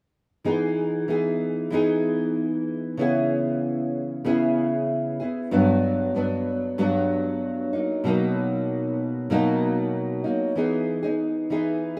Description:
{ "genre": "indie pop", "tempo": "95 BPM", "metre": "4/4", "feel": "straight", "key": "unclear", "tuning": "A4 = 445 Hz", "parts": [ { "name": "nylon-string guitar", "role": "solo", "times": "0.4-12.0 s", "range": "G2 to G#4", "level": "-24 LUFS", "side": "equal", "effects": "lush chorus, warbly pitch drift" } ], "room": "moderate lush hall reverb, RT60 2.6 s", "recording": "rough home demo mix", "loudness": "-24 LUFS", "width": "mono", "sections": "0.5-10.6 A section; 10.6-12.0 B section", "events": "none", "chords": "0.5 Emaj7; 3.0 C#m7; 5.5 Gmaj7; 7.7 Bmaj7; 10.6 Emaj7" }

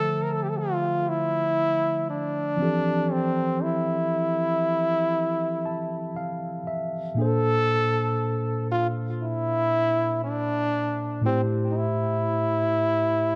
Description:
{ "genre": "R&B", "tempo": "59 BPM", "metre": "4/4", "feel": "swing 58% on 16ths", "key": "unclear", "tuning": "A4 = 439 Hz", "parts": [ { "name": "clear trombone", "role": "melody", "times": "0.0-13.4 s", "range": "C4 to Bb4", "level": "-27 LUFS", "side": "equal", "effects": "analog delay" }, { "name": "mellow tine electric piano", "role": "accompaniment", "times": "0.0-13.4 s", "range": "A2 to A5", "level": "-30 LUFS", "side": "equal", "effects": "none" } ], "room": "moderate spring reverb, RT60 1.7 s", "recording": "echo-heavy mix", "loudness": "-25 LUFS", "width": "mono", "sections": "0.0-13.4 A section", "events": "tine electric piano fill 5.1-7.2", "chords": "0.0 Dm9; 2.6 Fmaj7; 7.2 Bbmaj9; 11.2 Am7" }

